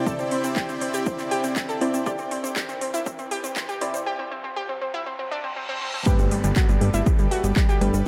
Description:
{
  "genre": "progressive house",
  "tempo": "120 BPM",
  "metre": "4/4",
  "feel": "straight",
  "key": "unclear",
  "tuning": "A4 = 444 Hz",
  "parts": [
    { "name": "supersaw pad", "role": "sustained chords", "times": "0.0-8.1 s", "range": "C3 to G5", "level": "-33 LUFS", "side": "equal", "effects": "sidechain pumping" },
    { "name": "analog pluck", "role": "arpeggios", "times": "0.0-8.0 s", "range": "G3 to A4", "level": "-30 LUFS", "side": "equal", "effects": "chorus, sidechain pumping, tape echo" },
    { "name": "unison pluck", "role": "stabs", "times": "0.0-8.0 s", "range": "G2 to D5", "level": "-31 LUFS", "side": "equal", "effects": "sidechain pumping, tape echo" },
    { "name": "riser, reverse cymbal and downlifter", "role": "sound effects", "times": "1.7-8.1 s", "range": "none", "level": "-38 LUFS", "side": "equal", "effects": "none" },
    { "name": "electronic kick drum", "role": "drums", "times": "0.1-7.7 s", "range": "none", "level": "-24 LUFS", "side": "equal", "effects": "overdrive" },
    { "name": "house drum kit", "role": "drums", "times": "0.1-8.0 s", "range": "handclaps, hi-hat", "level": "-35 LUFS", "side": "equal", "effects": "overdrive" },
    { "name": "tube shaker", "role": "percussion", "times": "0.1-8.0 s", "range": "none", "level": "-41 LUFS", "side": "equal", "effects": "none" },
    { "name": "fat analog bass", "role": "bass", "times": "6.2-8.0 s", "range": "G1 to G2", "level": "-25 LUFS", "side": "equal", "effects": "sidechain pumping" }
  ],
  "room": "moderate digital room reverb, RT60 1.1 s, digital ambience",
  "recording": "high-pass filter",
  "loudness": "-24 LUFS",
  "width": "mono",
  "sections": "0.0-6.1 A section; 6.1-8.1 B section",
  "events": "build-up 0.0-6.1; filter sweep 0.0-6.1; riser 1.7-6.1; reverse cymbal 5.1-6.1; drop 6.1-8.1",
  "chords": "0.0 Cadd9; 6.1 Gadd9",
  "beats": "| 0.06 0.56 1.06 1.56 | 2.06 2.56 3.06 3.56 | 4.06 4.56 5.06 5.56 | 6.06 6.56 7.06 7.56 | 8.06"
}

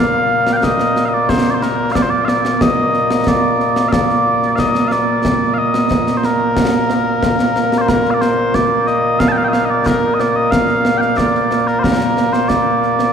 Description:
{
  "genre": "scottish traditional, Scottish pipe music",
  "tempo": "91 BPM",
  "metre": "4/4",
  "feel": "straight",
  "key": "Bb major",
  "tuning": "A4 = 442 Hz",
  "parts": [
    { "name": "mellow small bagpipes", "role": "melody", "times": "0.0-13.1 s", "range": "Bb2 to A5", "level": "-14 LUFS", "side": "equal", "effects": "none" },
    { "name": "concert snare drum and concert bass drum", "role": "drums", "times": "0.5-13.1 s", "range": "none", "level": "-18 LUFS", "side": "right 1 dB", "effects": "none" }
  ],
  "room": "wet cathedral reverb, RT60 4.6 s",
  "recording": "recorded in a church or concert hall, faint mains hum",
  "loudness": "-12 LUFS",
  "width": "side -7 dB against mid",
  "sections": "0.0-7.9 A section; 7.9-13.1 B section",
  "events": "none",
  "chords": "none",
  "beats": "0.63 1.29 1.95 | 2.61 3.27 3.92 4.58 | 5.24 5.90 6.56 7.22 | 7.88 8.54 9.20 9.86 | 10.52 11.18 11.84 12.50"
}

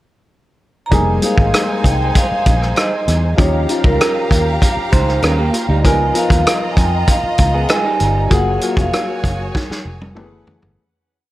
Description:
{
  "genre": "lush 1970s-style soul",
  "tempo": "97 BPM",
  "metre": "4/4",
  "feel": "straight",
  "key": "F minor",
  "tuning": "A4 = 441 Hz",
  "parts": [
    { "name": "vibraphone with medium hard mallets", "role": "melody", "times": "0.9-9.4 s", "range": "Bb4 to Bb5", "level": "-20 LUFS", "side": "right 2 dB", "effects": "none" },
    { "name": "warm studio violin section", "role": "second line", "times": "0.9-10.8 s", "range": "Db4 to Bb5", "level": "-24 LUFS", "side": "equal", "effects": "tape echo" },
    { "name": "warm concert grand piano", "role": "accompaniment", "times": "0.9-10.8 s", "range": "Fb3 to Bb4", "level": "-22 LUFS", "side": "left 3 dB", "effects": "none" },
    { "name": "vintage muted fingered electric bass", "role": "bass", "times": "0.9-10.8 s", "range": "F1 to F2", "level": "-18 LUFS", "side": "equal", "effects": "none" },
    { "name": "vintage drum kit", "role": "drums", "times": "0.9-10.8 s", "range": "hi-hat, kick drum, rim click, snare drum, toms", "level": "-16 LUFS", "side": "equal", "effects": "none" },
    { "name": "electric guitar through a small old amp", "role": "riff", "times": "4.9-8.3 s", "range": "G3 to C5", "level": "-21 LUFS", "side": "right 3 dB", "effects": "spring reverb" }
  ],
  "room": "small room ambience",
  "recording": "none",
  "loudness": "-13 LUFS",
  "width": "side -16 dB against mid",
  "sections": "0.0-0.9 pickup bar; 0.9-10.8 verse",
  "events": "fade-out 8.3-10.8; drum fill 9.5-10.8",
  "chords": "0.0 N.C.; 0.9 Fm11; 3.4 Eb9; 5.8 Db13; 8.3 Gbmaj9; 10.2 Gbm11",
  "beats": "0.30 | 0.92 1.54 2.15 2.77 | 3.38 4.00 4.62 5.23 | 5.85 6.46 7.08 7.69 | 8.31 8.93 9.54 10.16"
}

